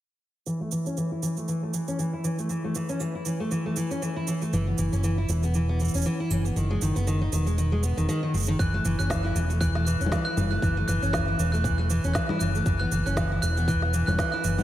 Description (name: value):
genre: folktronica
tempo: 118 BPM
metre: 4/4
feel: swing 56% on 16ths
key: unclear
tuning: A4 = 440 Hz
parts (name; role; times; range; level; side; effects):
- picked steel-string acoustic guitar; arpeggios; 0.5-14.6 s; D#3 to E4; -27 LUFS; equal; low-pass filter, ping-pong delay
- electronic shaker, snare drum and congas; drums; 0.5-14.6 s; none; -34 LUFS; right 1 dB; small room reverb
- hollow-body short-scale fingered electric bass; bass; 4.5-14.6 s; E1 to F#1; -26 LUFS; equal; none
- glockenspiel with hard plastic mallets; second line; 8.6-14.4 s; F#6; -31 LUFS; right 1 dB; ping-pong delay
- electronic kick drum; drums; 8.6-14.3 s; none; -29 LUFS; equal; small room reverb
room: moderate lush hall reverb, RT60 2.1 s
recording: dreamy mix soaked in reverb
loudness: -24 LUFS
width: side -13 dB against mid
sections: 0.5-8.6 A section; 8.6-14.6 B section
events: filter sweep on steel-string acoustic guitar 0.5-8.6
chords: 0.5 Esus4; 4.5 Esus2; 6.6 Emaj7; 8.6 F#m7; 12.7 Esus2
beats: | 0.46 0.97 1.48 1.98 | 2.49 3.00 3.51 4.02 | 4.53 5.03 5.54 6.05 | 6.56 7.07 7.58 8.09 | 8.59 9.10 9.61 10.12 | 10.63 11.14 11.64 12.15 | 12.66 13.17 13.68 14.19